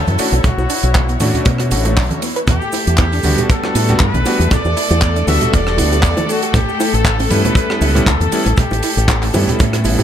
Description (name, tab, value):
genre	nu-disco, nu disco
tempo	118 BPM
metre	4/4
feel	swing 55% on 16ths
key	unclear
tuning	A4 = 441 Hz
part	brilliant trumpet section	melody	0.0-9.3 s	F#4 to E5	-22 LUFS	left 1 dB	tape echo
part	rich chamber string section	sustained chords	0.0-10.0 s	A3 to C#5	-23 LUFS	left 4 dB	sidechain pumping
part	fingered electric bass with an envelope filter	bass	0.0-10.0 s	E1 to B2	-16 LUFS	equal	tube saturation
part	wide unison pluck	arpeggios	0.1-10.0 s	A3 to B4	-25 LUFS	right 3 dB	sidechain pumping, tape echo
part	tight funk drum kit	drums	0.1-10.0 s	handclaps, hi-hat, rim click	-22 LUFS	right 2 dB	none
part	cabasa, congas and bongos	percussion	0.1-10.0 s	none	-23 LUFS	right 1 dB	none
part	clear electric grand piano	accompaniment	0.2-10.0 s	G3 to F#4	-22 LUFS	right 2 dB	sidechain pumping, diffuse ambient delay
part	kick drum	drums	0.4-9.7 s	none	-16 LUFS	equal	none
room	light reverb, studio ambience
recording	none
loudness	-12 LUFS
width	side -10 dB against mid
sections	0.0-10.0 A section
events	none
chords	0.0 Bm7; 2.2 Em7; 6.3 A7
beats	| 0.44 0.95 1.46 1.97 | 2.48 2.98 3.49 4.00 | 4.51 5.02 5.53 6.04 | 6.54 7.05 7.56 8.07 | 8.58 9.09 9.60